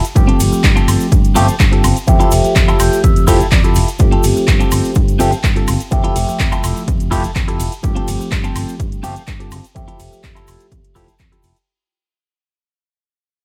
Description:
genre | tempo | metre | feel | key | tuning
filtered disco house | 125 BPM | 4/4 | straight | unclear | A4 = 439 Hz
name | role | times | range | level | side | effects
direct-recorded clean electric guitar | riff | 0.0-11.6 s | C4 to G5 | -23 LUFS | equal | phaser, sidechain pumping
house drum kit | drums | 0.0-11.7 s | handclaps, hi-hat, ride cymbal, shaker, woodblock | -24 LUFS | equal | sidechain pumping on hats, sidechain pumping on perc, sidechain pumping on cymbals
egg shaker | percussion | 0.0-11.7 s | none | -34 LUFS | equal | none
barky tine electric piano | accompaniment | 0.2-11.1 s | F3 to E5 | -21 LUFS | equal | phaser, sidechain pumping
fingered electric bass | bass | 0.2-11.5 s | F1 to G2 | -20 LUFS | equal | sidechain pumping
electronic kick drum | drums | 0.2-11.3 s | none | -17 LUFS | equal | none
room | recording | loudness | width
little or no reverb | none | -14 LUFS | mono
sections
0.0-11.7 A section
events
drop 0.0-11.7; clean electric guitar fill 2.6-4.0; fade-out 4.0-11.7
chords
0.2 G9sus4; 2.1 Fmaj9; 4.0 G9sus4; 5.9 Fmaj9; 7.8 G9sus4; 9.8 Fmaj9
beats
| 0.16 0.64 1.12 1.60 | 2.08 2.56 3.04 3.52 | 4.00 4.48 4.96 5.44 | 5.92 6.40 6.88 7.36 | 7.84 8.32 8.80 9.28 | 9.76 10.24 10.72 11.20

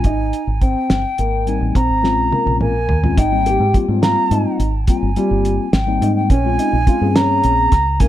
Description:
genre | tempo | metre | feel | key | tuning
progressive instrumental, band music in an uneven meter | 211 BPM (eighths) | 11/8 | straight | unclear | A4 = 438 Hz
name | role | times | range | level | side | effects
mellow silver concert flute | melody | 0.0-8.1 s | G5 to Bb5 | -20 LUFS | right 1 dB | tape echo
mellow tine electric piano | accompaniment | 0.0-8.1 s | G3 to Ab4 | -22 LUFS | left 8 dB | none
deep dub fingered electric bass | bass | 0.0-8.1 s | G1 to Ab2 | -19 LUFS | equal | none
cloth-damped thuddy drum kit | drums | 0.0-8.1 s | hi-hat, kick drum, snare drum, toms | -17 LUFS | equal | none
dark grand piano | arpeggios | 0.1-8.1 s | G3 to G4 | -22 LUFS | right 1 dB | none
room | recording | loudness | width
moderate studio reverb, RT60 0.5 s | dark, warm production | -14 LUFS | side -12 dB against mid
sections
0.0-3.2 A section; 3.2-8.1 B section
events
drum fill 2.0-3.2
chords
0.1 Abmaj7; 1.8 Bbm9; 3.2 Abmaj7; 6.3 Bbm7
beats
| 0.05 0.33 0.62 0.90 1.19 1.47 1.76 2.04 2.32 2.61 2.89 | 3.18 3.46 3.75 4.03 4.32 4.60 4.88 5.17 5.45 5.74 6.02 | 6.30 6.59 6.87 7.16 7.44 7.73 8.01

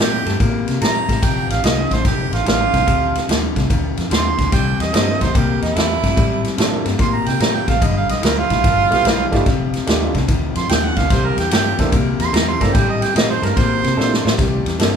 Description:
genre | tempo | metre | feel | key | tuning
electric blues shuffle | 146 BPM | 4/4 | swing 66% on 8ths | C mixolydian | A4 = 440 Hz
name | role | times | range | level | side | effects
warm harmonica | second line | 0.0-14.4 s | Eb4 to C6 | -20 LUFS | right 5 dB | overdrive
electric guitar through a small old amp | riff | 0.0-15.0 s | F2 to Bb3 | -23 LUFS | left 5 dB | none
vintage muted fingered electric bass | bass | 0.0-15.0 s | F1 to C3 | -22 LUFS | equal | none
swinging big-band drum kit | drums | 0.0-14.9 s | kick drum, ride cymbal, snare drum | -18 LUFS | equal | none
warm grand piano | accompaniment | 4.9-15.0 s | A3 to A4 | -24 LUFS | right 3 dB | none
room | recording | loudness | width
moderate large studio reverb, RT60 1.1 s | band playing live in one room | -14 LUFS | side -7 dB against mid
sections
0.0-14.4 A section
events
harmonica solo 0.0-14.4; drum fill 14.0-14.4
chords
0.0 C7(no3); 1.2 F6; 4.5 C13; 7.8 G13; 9.5 F13; 11.1 C13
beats
0.40 0.81 | 1.23 1.64 2.05 2.46 | 2.87 3.29 3.70 4.11 | 4.52 4.93 5.35 5.76 | 6.17 6.58 6.99 7.41 | 7.82 8.23 8.64 9.05 | 9.46 9.87 10.28 10.69 | 11.10 11.51 11.92 12.34 | 12.74 13.15 13.56 13.97 | 14.38 14.79

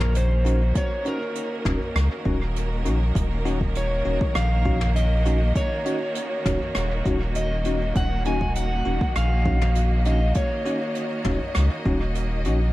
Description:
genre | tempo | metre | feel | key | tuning
ambient dub | 100 BPM | 4/4 | straight | Eb minor | A4 = 442 Hz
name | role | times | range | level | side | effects
electric slide guitar | melody | 0.0-11.5 s | Bb4 to Ab5 | -29 LUFS | equal | dub echo
bright studio string section | sustained chords | 0.0-12.7 s | Eb3 to Eb5 | -31 LUFS | right 1 dB | none
soft dub sub bass | bass | 0.0-12.7 s | Eb1 to Db2 | -22 LUFS | equal | none
soft brush drum kit | drums | 0.0-12.6 s | hi-hat, rim click, toms | -32 LUFS | equal | dub echo
bell-like tine electric piano | stabs | 0.5-12.6 s | Db4 to Gb4 | -31 LUFS | left 1 dB | phaser, dub echo
electronic kick drum | drums | 0.8-12.0 s | none | -26 LUFS | equal | none
room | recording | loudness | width
light reverb, small room ambience | vinyl crackle | -21 LUFS | side -17 dB against mid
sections
0.0-12.7 A section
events
none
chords
0.0 Ebm7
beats
0.15 | 0.76 1.35 1.96 2.56 | 3.15 3.75 4.36 4.96 | 5.55 6.16 6.75 7.36 | 7.96 8.55 9.15 9.76 | 10.36 10.96 11.55 12.15

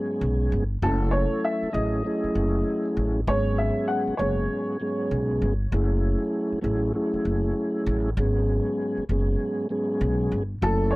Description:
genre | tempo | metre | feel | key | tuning
hip hop, boom-bap hip-hop | 98 BPM | 4/4 | swing 62% on 16ths | unclear | A4 = 440 Hz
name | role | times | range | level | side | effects
mellow tonewheel organ | accompaniment | 0.0-11.0 s | G#2 to A4 | -26 LUFS | equal | chorus vibrato, slow rotary speaker, cassette tape, high-pass filter, low-pass filter
upright bass | bass | 0.2-11.0 s | F#1 to B1 | -25 LUFS | equal | none
dark upright piano | melody | 0.8-5.1, 10.6-11.0 s | A4 to F#5 | -28 LUFS | equal | high-pass filter, low-pass filter, analog delay
room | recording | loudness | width
little or no reverb | dry, gritty hardware recording | -22 LUFS | side -21 dB against mid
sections
0.0-11.0 A section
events
none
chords
0.0 C#7sus4; 0.8 F#m9; 3.3 C#7sus4; 5.7 F#m9; 8.2 C#7sus4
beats
0.21 | 0.82 1.44 2.05 2.66 | 3.27 3.89 4.50 5.11 | 5.72 6.33 6.95 7.56 | 8.17 8.78 9.40 10.01 | 10.62

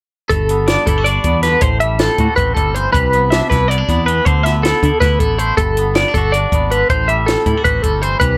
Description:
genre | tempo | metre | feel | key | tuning
math rock and midwest emo | 318 BPM (eighths) | 7/8 | straight | G major | A4 = 437 Hz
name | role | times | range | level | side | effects
twangy electric guitar | accompaniment | 0.3-8.4 s | G2 to F#4 | -24 LUFS | equal | none
twelve-string electric guitar | arpeggios | 0.3-8.4 s | A4 to E5 | -18 LUFS | equal | tremolo
mellow fretless electric bass | bass | 0.3-8.4 s | G1 to D3 | -20 LUFS | equal | ensemble chorus
compact cocktail drum kit | drums | 0.3-8.3 s | hi-hat, kick drum, snare drum | -20 LUFS | equal | none
room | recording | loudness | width
light reverb | none | -15 LUFS | mono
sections
0.3-8.4 A section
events
none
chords
0.3 Gmaj9; 1.6 Am7; 2.9 Cmaj9; 4.3 Dsus2; 5.6 Gmaj9; 6.9 Am7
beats
| 0.30 0.49 0.68 0.87 1.06 1.25 1.43 | 1.62 1.81 2.00 2.19 2.38 2.56 2.75 | 2.94 3.13 3.32 3.51 3.69 3.88 4.07 | 4.26 4.45 4.64 4.83 5.01 5.20 5.39 | 5.58 5.77 5.96 6.14 6.33 6.52 6.71 | 6.89 7.08 7.27 7.46 7.65 7.83 8.02 | 8.21

